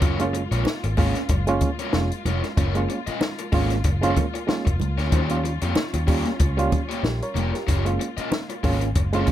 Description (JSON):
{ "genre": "funk", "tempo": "94 BPM", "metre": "4/4", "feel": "swing 56% on 16ths", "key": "unclear", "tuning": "A4 = 442 Hz", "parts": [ { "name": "raw garage guitar", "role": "accompaniment", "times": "0.0-9.3 s", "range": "Bb3 to Eb5", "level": "-29 LUFS", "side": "left 2 dB", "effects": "overdrive" }, { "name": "dark studio string section", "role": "sustained chords", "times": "0.0-9.3 s", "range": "G3 to F4", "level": "-34 LUFS", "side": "left 1 dB", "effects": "none" }, { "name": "barky reed electric piano", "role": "stabs", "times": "0.0-9.3 s", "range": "G3 to Db5", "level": "-26 LUFS", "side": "right 4 dB", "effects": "overdrive, fast tremolo" }, { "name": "vintage muted picked electric bass", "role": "bass", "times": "0.0-9.2 s", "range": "F1 to F2", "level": "-24 LUFS", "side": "equal", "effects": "none" }, { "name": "compact cocktail drum kit", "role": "drums", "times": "0.0-9.3 s", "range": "hi-hat, kick drum, snare drum", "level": "-24 LUFS", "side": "left 1 dB", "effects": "none" }, { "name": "congas", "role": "percussion", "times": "0.0-9.3 s", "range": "none", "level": "-31 LUFS", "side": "right 5 dB", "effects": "none" } ], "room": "light reverb", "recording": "none", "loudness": "-20 LUFS", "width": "side -12 dB against mid", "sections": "0.0-9.3 A section", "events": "none", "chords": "0.0 Gbmaj7; 5.1 Eb9; 7.7 Gbmaj7", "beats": "| 0.02 0.66 1.29 1.93 | 2.57 3.21 3.85 4.49 | 5.13 5.76 6.40 7.04 | 7.68 8.32 8.96" }